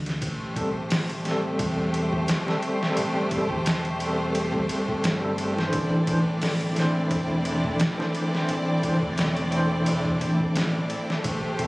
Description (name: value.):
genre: trip hop.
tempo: 87 BPM.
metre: 4/4.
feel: swing 55% on 16ths.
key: unclear.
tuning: A4 = 441 Hz.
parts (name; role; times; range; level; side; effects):
deep dub fingered electric bass; bass; 0.0-11.7 s; E1 to D2; -29 LUFS; equal; none.
trip hop sampler-style drum kit; drums; 0.1-11.7 s; hi-hat, kick drum, ride cymbal, snare drum; -28 LUFS; equal; studio reverb.
rich studio violin section; sustained chords; 0.2-11.7 s; A3 to D5; -30 LUFS; equal; none.
flickering grainy texture; texture; 0.9-11.7 s; A3 to A4; -36 LUFS; equal; built-in reverb.
overdriven tine electric piano; accompaniment; 0.5-11.7 s; E3 to C5; -27 LUFS; equal; medium tremolo, tape echo.
room: light reverb, digital ambience.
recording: recorded on a phone in the room, club reverb, vinyl crackle, compression.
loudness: -22 LUFS.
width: side -22 dB against mid.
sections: 0.0-11.7 A section.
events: none.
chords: 0.2 Am7; 5.7 Cadd9.